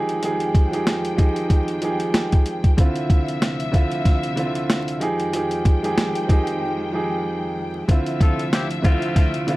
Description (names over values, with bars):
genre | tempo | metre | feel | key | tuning
hip hop, boom-bap hip-hop | 94 BPM | 4/4 | swing 56% on 16ths | unclear | A4 = 440 Hz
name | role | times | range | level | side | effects
dark baby grand piano | accompaniment | 0.0-9.6 s | D3 to Ab4 | -23 LUFS | right 1 dB | cassette tape, high-pass filter, low-pass filter, plate reverb
warm studio string section | sustained chords | 0.0-9.6 s | D2 to G5 | -30 LUFS | left 1 dB | high-pass filter, low-pass filter, plate reverb
boom bap sampler-style drum kit | drums | 0.1-9.6 s | hi-hat, kick drum, snare drum | -18 LUFS | equal | none
edgy saxophone section | stabs | 8.2-9.4 s | A3 to A4 | -28 LUFS | left 3 dB | high-pass filter, low-pass filter, tape echo
room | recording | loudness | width
light reverb | dark, warm production, vinyl crackle | -18 LUFS | side -19 dB against mid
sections
0.0-7.9 A section; 7.9-9.6 B section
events
break 6.6-7.9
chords
0.0 Fm9; 2.8 Dm9; 5.0 Fm9; 7.9 Dm9